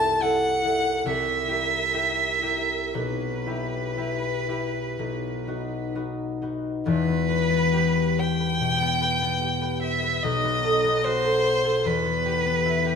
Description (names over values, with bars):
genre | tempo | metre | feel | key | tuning
classical, romantic duo for violin and harp | 57-76 BPM | 4/4 | rubato | E minor | A4 = 440 Hz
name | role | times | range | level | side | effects
rich violin | melody | 0.0-13.0 s | B4 to A5 | -25 LUFS | left 1 dB | none
concert harp | accompaniment | 0.0-13.0 s | E1 to C5 | -25 LUFS | left 1 dB | none
room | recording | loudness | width
wet stone room reverb, RT60 1.3 s | minimal, uncompressed stereo recording | -22 LUFS | side -6 dB against mid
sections
0.0-6.9 A section; 6.9-13.0 B section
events
none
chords
0.0 Am/C; 1.1 C7; 2.9 Em/B; 5.0 B; 6.9 Em; 10.2 B7; 11.9 Em